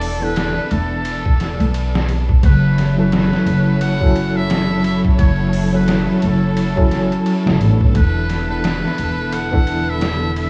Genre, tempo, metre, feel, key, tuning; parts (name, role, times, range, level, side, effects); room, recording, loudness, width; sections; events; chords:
trip hop; 87 BPM; 4/4; swing 59% on 16ths; F# minor; A4 = 440 Hz
trumpet with metal mute; melody; 0.0-10.5 s; A4 to F#5; -28 LUFS; equal
tine electric piano; accompaniment; 0.0-10.5 s; E3 to A4; -22 LUFS; equal; tremolo
rich symphonic string section; sustained chords; 0.0-10.5 s; D3 to C#5; -26 LUFS; equal
upright bass; bass; 0.0-10.5 s; E1 to B1; -22 LUFS; equal
trip hop sampler-style drum kit; drums; 0.0-10.5 s; hi-hat, kick drum, ride cymbal, snare drum; -22 LUFS; equal; studio reverb
studio ambience; worn, warbling old tape, cassette tape, vinyl crackle, warbly pitch drift, small room ambience; -17 LUFS; mono
0.0-10.5 A section
0.0 E7sus4; 2.4 F#m7; 7.9 E7sus4